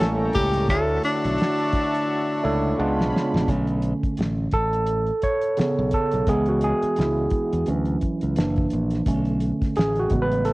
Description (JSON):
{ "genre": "R&B, neo-soul", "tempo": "86 BPM", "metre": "4/4", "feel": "swing 56% on 16ths", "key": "B dorian", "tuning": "A4 = 442 Hz", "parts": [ { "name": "breathy tenor saxophone", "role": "melody", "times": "0.0-3.1 s", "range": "D4 to A4", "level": "-24 LUFS", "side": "left 1 dB", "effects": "cassette tape" }, { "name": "overdriven tine electric piano", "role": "accompaniment", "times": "0.0-10.5 s", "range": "A2 to C#5", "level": "-23 LUFS", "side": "right 1 dB", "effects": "cassette tape" }, { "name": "warm analog pad", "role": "sustained chords", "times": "0.0-3.5 s", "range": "E#4 to C#6", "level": "-32 LUFS", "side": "right 1 dB", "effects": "chorus, cassette tape" }, { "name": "modern bright fingered electric bass", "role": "bass", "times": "0.0-10.5 s", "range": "F#1 to E2", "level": "-26 LUFS", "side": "equal", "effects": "transformer saturation" }, { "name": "cloth-damped thuddy drum kit", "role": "drums", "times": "0.0-10.5 s", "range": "hi-hat, kick drum, snare drum", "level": "-25 LUFS", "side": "equal", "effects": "cassette tape" } ], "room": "small room ambience", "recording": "home recording on cassette", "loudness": "-20 LUFS", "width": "side -21 dB against mid", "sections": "0.0-3.5 A section; 3.5-10.5 B section", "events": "drum fill 2.1-3.5; tine electric piano solo 3.5-10.5", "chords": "0.0 A7b9; 0.7 Dmaj9; 2.8 C#7b9; 3.5 Bm9; 4.5 Amaj9; 6.3 C#m7; 7.7 Dmaj7; 8.4 F#7b13; 9.1 Bm9", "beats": "| 0.69 1.39 2.09 2.79 | 3.48 4.18 4.88 5.58 | 6.27 6.97 7.67 8.37 | 9.06 9.76 10.46" }